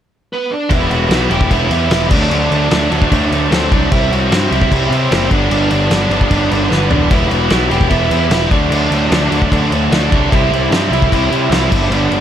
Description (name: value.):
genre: punk rock.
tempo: 150 BPM.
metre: 4/4.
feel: straight.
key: E minor.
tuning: A4 = 440 Hz.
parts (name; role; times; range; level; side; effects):
smooth overdriven lead guitar; melody; 0.3-12.2 s; B3 to G5; -19 LUFS; right 1 dB; tape echo.
raw garage guitar; riff; 0.7-12.2 s; G2 to E4; -20 LUFS; left 15 dB; overdrive.
tight distorted guitar; riff; 0.7-12.2 s; G2 to E4; -19 LUFS; right 14 dB; distortion.
fuzz picked electric bass; bass; 0.7-12.2 s; E1 to C3; -17 LUFS; equal; overdrive.
loose indie drum kit; drums; 0.7-12.2 s; crash cymbal, kick drum, snare drum, toms; -16 LUFS; equal; none.
room: little or no reverb.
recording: none.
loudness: -11 LUFS.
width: side -10 dB against mid.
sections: 0.7-12.2 A section.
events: drum fill 6.7-7.1.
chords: 0.0 Bm; 0.7 Em; 2.1 D; 3.9 C; 5.3 G; 7.1 Em; 8.5 D; 10.3 C.